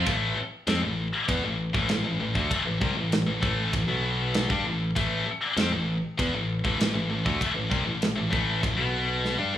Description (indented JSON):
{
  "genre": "heavy metal",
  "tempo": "98 BPM",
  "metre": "4/4",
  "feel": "straight",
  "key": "A minor",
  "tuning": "A4 = 441 Hz",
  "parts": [
    { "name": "heavy high-gain guitar", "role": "riff", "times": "0.0-9.6 s", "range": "A2 to D4", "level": "-26 LUFS", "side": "left 2 dB", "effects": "distortion" },
    { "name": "modern bright picked electric bass", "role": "bass", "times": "0.0-9.6 s", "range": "A1 to G2", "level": "-30 LUFS", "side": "right 1 dB", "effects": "none" },
    { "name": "tight metal drum kit", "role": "drums", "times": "0.1-9.6 s", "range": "kick drum, ride cymbal, snare drum, toms", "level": "-30 LUFS", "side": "right 1 dB", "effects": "none" }
  ],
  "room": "little or no reverb",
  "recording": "rough home demo mix, studio reverb",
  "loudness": "-24 LUFS",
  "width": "side -11 dB against mid",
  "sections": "0.1-9.6 A section",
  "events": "drum fill 9.2-9.6",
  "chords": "0.1 A5; 3.9 B5; 4.5 A5; 8.8 B5"
}